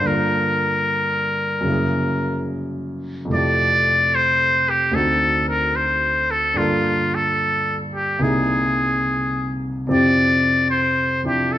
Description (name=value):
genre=jazz ballad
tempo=73 BPM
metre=4/4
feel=swing 69% on 8ths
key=F major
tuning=A4 = 440 Hz
part: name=trumpet with metal mute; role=melody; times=0.0-11.6 s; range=F4 to D5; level=-18 LUFS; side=left 1 dB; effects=none
part: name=warm grand piano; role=accompaniment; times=0.0-11.6 s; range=C2 to Bb4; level=-22 LUFS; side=equal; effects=none
room=moderate large studio reverb, RT60 1.4 s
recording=band playing live in one room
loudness=-17 LUFS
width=side -12 dB against mid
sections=0.0-9.9 A section; 9.9-11.6 A section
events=none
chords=0.0 Gm7; 1.7 Gb9; 3.3 Fmaj7; 4.9 D7b9; 6.6 Gm7; 8.2 C7alt; 9.9 F5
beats=| 0.03 0.85 1.66 2.48 | 3.30 4.11 4.93 5.75 | 6.57 7.38 8.21 9.04 | 9.86 10.69 11.51